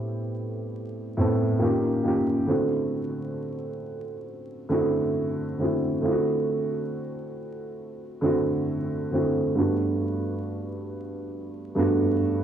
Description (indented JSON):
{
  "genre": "hip hop",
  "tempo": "68 BPM",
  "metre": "4/4",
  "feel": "swing 58% on 16ths",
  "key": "unclear",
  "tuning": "A4 = 440 Hz",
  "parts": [
    { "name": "dark upright piano", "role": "solo", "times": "0.0-12.4 s", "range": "G2 to A4", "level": "-24 LUFS", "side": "right 1 dB", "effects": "cassette tape, low-pass filter, analog delay" }
  ],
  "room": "light reverb, small room ambience",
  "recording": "home recording on cassette, vinyl crackle",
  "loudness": "-24 LUFS",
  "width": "side -9 dB against mid",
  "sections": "0.0-12.4 A section",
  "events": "none",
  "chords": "0.0 Am7; 1.6 D#9; 2.5 D7; 9.6 Gmaj7"
}